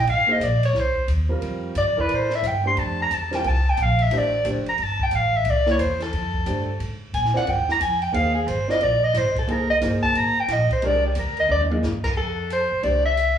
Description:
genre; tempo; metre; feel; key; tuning
modal jazz; 179 BPM; 4/4; swing 64% on 8ths; F major; A4 = 440 Hz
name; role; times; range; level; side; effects
mellow soprano saxophone; melody; 0.0-13.4 s; G4 to C6; -21 LUFS; equal; slapback echo
upright bass; bass; 0.0-13.4 s; F1 to Bb2; -24 LUFS; equal; none
compact cocktail drum kit; drums; 0.1-13.3 s; crash cymbal, hi-hat, kick drum, ride cymbal, snare drum, toms; -33 LUFS; equal; none
warm concert grand piano; accompaniment; 0.3-13.0 s; G3 to Eb5; -27 LUFS; right 1 dB; slapback echo
room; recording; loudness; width
light reverb; live gig heard through the venue's PA, club reverb, small room ambience; -19 LUFS; side -9 dB against mid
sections
0.0-12.2 A section; 12.2-13.4 B section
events
soprano saxophone solo 0.0-12.2; drum fill 11.5-11.8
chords
0.0 Abadd9; 1.4 Fmaj9; 6.8 Abmaj9; 12.2 Fmaj9

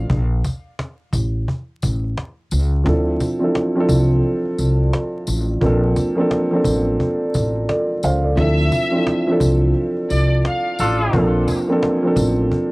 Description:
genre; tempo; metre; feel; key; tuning
hip hop, boom-bap hip-hop; 87 BPM; 4/4; swing 61% on 16ths; D minor; A4 = 445 Hz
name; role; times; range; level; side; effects
dark upright piano; accompaniment; 0.0-12.7 s; F3 to F5; -18 LUFS; right 1 dB; cassette tape, high-pass filter, low-pass filter
upright bass; bass; 0.0-12.5 s; A1 to D2; -18 LUFS; equal; transformer saturation
cajon; drums; 0.1-12.7 s; none; -24 LUFS; equal; cassette tape
tambourine; percussion; 0.4-12.4 s; none; -35 LUFS; left 3 dB; none
rich studio violin section; melody; 8.4-10.8 s; D5 to F5; -25 LUFS; equal; high-pass filter, low-pass filter, cassette tape, analog delay
warm horn section; stabs; 10.8-11.3 s; D4 to A4; -23 LUFS; left 1 dB; high-pass filter, low-pass filter, cassette tape, analog delay
room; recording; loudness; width
little or no reverb; home recording on cassette, vinyl crackle; -16 LUFS; side -24 dB against mid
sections
0.0-12.7 A section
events
none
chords
0.1 A; 2.9 Dm9; 5.6 Bbmaj7; 8.4 Dm9; 11.1 Bbmaj7

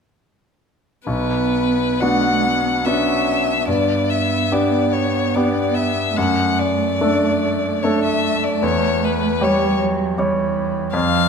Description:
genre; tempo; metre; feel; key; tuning
classical, slow romantic movement for piano quartet; 61-80 BPM; 3/4; rubato; B minor; A4 = 440 Hz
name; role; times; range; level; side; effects
rich violin; melody; 1.1-11.3 s; B4 to F#5; -20 LUFS; left 6 dB; none
warm cello; second line; 1.1-11.3 s; E3 to C#4; -23 LUFS; right 7 dB; none
bright concert grand piano; accompaniment; 1.1-11.3 s; B1 to C#5; -20 LUFS; equal; none
room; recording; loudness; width
wet recital hall reverb, RT60 1.6 s; none; -16 LUFS; side -6 dB against mid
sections
1.1-11.3 A section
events
none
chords
1.1 Bm; 3.7 G; 6.2 D/F#; 8.6 C#dim/E

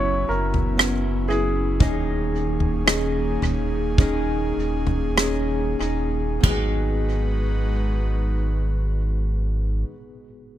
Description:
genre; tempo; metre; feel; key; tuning
pop ballad; 47-62 BPM; 4/4; straight; G# minor; A4 = 439 Hz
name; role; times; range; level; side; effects
warm baby grand piano; melody; 0.0-5.1 s; G#4 to C#5; -28 LUFS; equal; tape echo
mellow tine electric piano; accompaniment; 0.0-10.6 s; G#1 to G#4; -28 LUFS; equal; medium stereo tremolo
airy breathy pad; sustained chords; 0.0-9.9 s; D#3 to B4; -32 LUFS; right 2 dB; chorus
fingerpicked steel-string acoustic guitar; arpeggios; 0.0-10.0 s; G#2 to B4; -31 LUFS; left 1 dB; none
sub bass with octave; bass; 0.0-9.8 s; D#1 to G#1; -24 LUFS; equal; none
unplugged drum kit; drums; 0.5-6.7 s; kick drum, rim click, splash cymbal, toms; -21 LUFS; equal; tape echo
room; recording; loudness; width
small room ambience; echo-heavy mix; -20 LUFS; side -12 dB against mid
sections
0.0-6.4 A section; 6.4-10.6 B section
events
slowing down 0.0-6.4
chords
0.0 F#7sus4; 1.8 D#7sus4; 6.4 G#m7

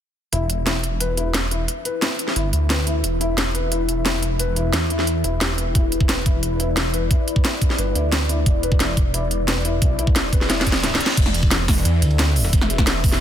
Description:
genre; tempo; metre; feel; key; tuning
dark technical drum and bass; 177 BPM; 4/4; straight; unclear; A4 = 442 Hz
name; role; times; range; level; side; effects
deep dark ambient pad; sustained chords; 1.1-13.2 s; E4 to E5; -28 LUFS; left 3 dB; chorus, built-in reverb, sidechain pumping
felt-muted upright piano; arpeggios; 0.3-10.9 s; E4 to B4; -29 LUFS; left 3 dB; sidechain pumping, low-pass filter, tape echo
phased detuned saw bass; bass; 0.3-13.2 s; E1 to E2; -23 LUFS; equal; phaser, sidechain pumping
drum and bass drum kit; drums; 0.3-13.2 s; crash cymbal, hi-hat, snare drum; -22 LUFS; equal; none
electronic kick drum; drums; 5.8-13.1 s; none; -18 LUFS; equal; none
reverse cymbal; sound effects; 10.8-11.2 s; none; -31 LUFS; right 2 dB; none
breakbeat sampler-style drum kit; drums; 11.2-13.1 s; hi-hat, ride cymbal, snare drum; -32 LUFS; right 2 dB; none
growling FM bass; bass; 12.0-12.5 s; D2; -17 LUFS; equal; none
room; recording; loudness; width
light reverb, digital ambience; dense, heavily limited modern master; -17 LUFS; side -10 dB against mid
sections
0.3-11.2 A section; 11.2-13.2 B section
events
drum fill 10.5-11.2; reverse cymbal 10.8-11.2; drop 11.2-13.2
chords
0.3 E5

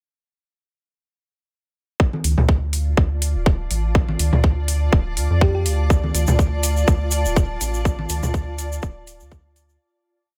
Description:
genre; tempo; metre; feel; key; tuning
minimal techno; 123 BPM; 4/4; swing 55% on 16ths; D minor; A4 = 440 Hz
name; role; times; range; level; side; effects
electronic kick drum; drums; 2.0-9.4 s; none; -19 LUFS; equal; small room ambience
granular cloud pad; texture; 2.9-9.8 s; F4 to A5; -32 LUFS; equal; built-in reverb, sidechain pumping
electronic congas and toms; percussion; 2.1-8.3 s; none; -26 LUFS; equal; small room ambience, analog delay
rubbery square bass; bass; 2.2-9.8 s; D1 to F2; -23 LUFS; equal; sidechain pumping
electronic hi-hat; drums; 2.2-9.7 s; none; -29 LUFS; equal; small room ambience
thumb-piano-like synth pluck; melody; 5.4-5.6 s; G4; -31 LUFS; equal; chorus, cassette tape, analog delay
egg shaker; percussion; 5.9-9.8 s; none; -32 LUFS; equal; none
room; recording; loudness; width
light reverb; echo-heavy mix; -20 LUFS; mono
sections
2.0-9.8 groove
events
fade-in on ambient pad 2.0-9.8; fade-out 7.2-9.8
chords
2.0 Dm

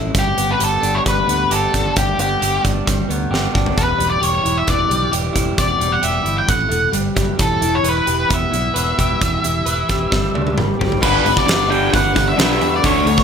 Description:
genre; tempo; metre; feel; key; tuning
quiet-loud alternative rock; 132 BPM; 4/4; straight; unclear; A4 = 439 Hz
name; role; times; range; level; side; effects
electric guitar through a small old amp; arpeggios; 0.0-13.2 s; E2 to B4; -22 LUFS; equal; lush chorus
fingered electric bass; bass; 0.0-13.2 s; E1 to E2; -23 LUFS; equal; none
huge arena drum kit; drums; 0.1-13.2 s; crash cymbal, hi-hat, kick drum, snare drum, toms; -20 LUFS; right 1 dB; none
octave-fuzz lead guitar; melody; 0.2-13.2 s; G4 to G5; -19 LUFS; left 1 dB; distortion
raw garage guitar; riff; 11.0-13.2 s; G2 to D4; -19 LUFS; left 2 dB; overdrive
room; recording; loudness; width
light reverb, small room ambience; none; -14 LUFS; side -7 dB against mid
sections
0.0-11.0 A section; 11.0-13.2 B section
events
drum fill 3.3-3.8, 10.1-11.0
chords
0.1 G; 3.8 Em; 6.5 A5; 6.9 N.C.; 7.4 Em; 10.1 G5; 10.6 N.C.; 11.0 G

